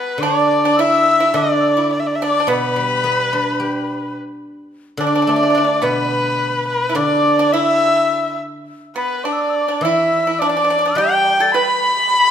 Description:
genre	chinese traditional, Chinese chamber ensemble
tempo	106 BPM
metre	4/4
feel	rubato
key	unclear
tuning	A4 = 439 Hz
part	dark erhu	melody	0.0-12.3 s	B4 to B5	-17 LUFS	equal	none
part	bright reedy dizi	second line	0.0-12.3 s	B5 to A6	-20 LUFS	left 5 dB	none
part	pipa	second line	0.0-12.3 s	B3 to B4	-22 LUFS	right 4 dB	none
part	guzheng	accompaniment	0.2-12.3 s	B2 to G4	-22 LUFS	equal	none
room	wet recital hall reverb, RT60 1.7 s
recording	minimal, uncompressed stereo recording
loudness	-14 LUFS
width	side -8 dB against mid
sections	0.2-12.3 A section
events	none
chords	none

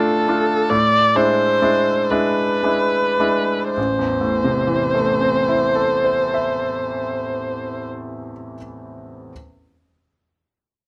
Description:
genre	classical, romantic duo for viola and grand piano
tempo	34-49 BPM (dotted quarters)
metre	6/8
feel	rubato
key	A minor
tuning	A4 = 440 Hz
part	warm viola	melody	0.0-7.8 s	A4 to D5	-21 LUFS	equal	none
part	bright grand piano	accompaniment	0.0-9.3 s	A1 to E5	-24 LUFS	equal	none
room	light reverb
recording	close, detailed microphones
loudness	-19 LUFS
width	mono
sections	0.0-3.8 A section; 3.8-7.1 B section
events	slowing down 0.0-3.8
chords	0.0 Dm/A; 0.7 E7/A; 3.8 Am

